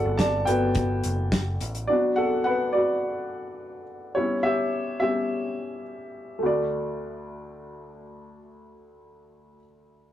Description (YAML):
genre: piano-driven pop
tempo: 106 BPM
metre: 4/4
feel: straight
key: D major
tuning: A4 = 441 Hz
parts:
  - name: warm upright piano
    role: accompaniment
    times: 0.0-10.1 s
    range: D2 to A5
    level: -25 LUFS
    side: equal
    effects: none
  - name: picked electric bass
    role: bass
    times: 0.0-1.9 s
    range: F#1 to A1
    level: -28 LUFS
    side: equal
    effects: none
  - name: damped 70s drum kit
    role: drums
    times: 0.2-1.9 s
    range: hi-hat, kick drum, snare drum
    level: -26 LUFS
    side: equal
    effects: none
room: moderate booth ambience, RT60 0.2 s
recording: rough rehearsal-room recording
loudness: -23 LUFS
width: side -11 dB against mid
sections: 0.0-6.4 A section; 6.4-8.7 B section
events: upright piano solo 0.0-6.4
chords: 0.0 Gmaj7; 1.9 Bm; 4.2 G6; 6.4 D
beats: 0.19 0.76 1.32 | 1.89 2.45 3.02 3.59 | 4.16 4.72 5.29 5.86 | 6.42 6.99 7.55 8.12